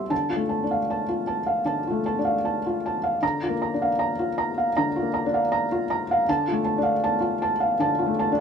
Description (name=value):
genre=neoclassical minimalist piano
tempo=78 BPM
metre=4/4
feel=rubato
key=D minor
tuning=A4 = 438 Hz
part: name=felt-muted upright piano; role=solo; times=0.0-8.4 s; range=C3 to C6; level=-22 LUFS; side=equal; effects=none
room=moderate studio reverb, RT60 0.8 s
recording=band playing live in one room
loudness=-22 LUFS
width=side -7 dB against mid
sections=0.0-8.4 A section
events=none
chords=0.1 Dm; 3.2 Bb/D; 6.3 Dm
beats=| 0.11 0.90 1.67 2.45 | 3.22 3.98 4.74 5.50 | 6.27 7.03 7.79